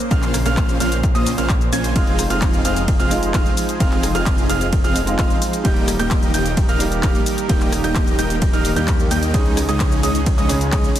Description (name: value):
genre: EDM, festival progressive house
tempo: 130 BPM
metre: 4/4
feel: straight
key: F minor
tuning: A4 = 440 Hz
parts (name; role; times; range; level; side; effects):
- lush unison pad; sustained chords; 0.0-11.0 s; Db3 to C5; -28 LUFS; equal; chorus, sidechain pumping
- big-room dance drum kit; drums; 0.0-11.0 s; handclaps, hi-hat, ride cymbal, rim click, shaker; -26 LUFS; left 1 dB; none
- warm baby grand piano; arpeggios; 0.1-10.9 s; Eb6 to Ab6; -27 LUFS; right 5 dB; sidechain pumping, dub echo
- dense compressed supersaw; riff; 0.1-10.9 s; Ab3 to Ab5; -24 LUFS; equal; sidechain pumping, dub echo
- detuned saw bass; bass; 0.1-10.9 s; Eb1 to Eb2; -24 LUFS; equal; sidechain pumping
- electronic kick drum; drums; 0.1-10.8 s; none; -19 LUFS; equal; overdrive
- warm concert grand piano; accompaniment; 1.9-11.0 s; Db3 to Ab4; -25 LUFS; right 2 dB; sidechain pumping, dub echo
room: digital ambience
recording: dense, heavily limited modern master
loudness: -15 LUFS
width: side -11 dB against mid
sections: 0.0-11.0 A section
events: none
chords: 0.0 Bbmadd9; 2.0 Fm7; 5.6 Eb; 9.3 Dbsus2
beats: | 0.11 0.57 1.03 1.50 | 1.96 2.42 2.88 3.34 | 3.80 4.26 4.73 5.19 | 5.65 6.11 6.57 7.03 | 7.50 7.96 8.42 8.88 | 9.34 9.80 10.27 10.73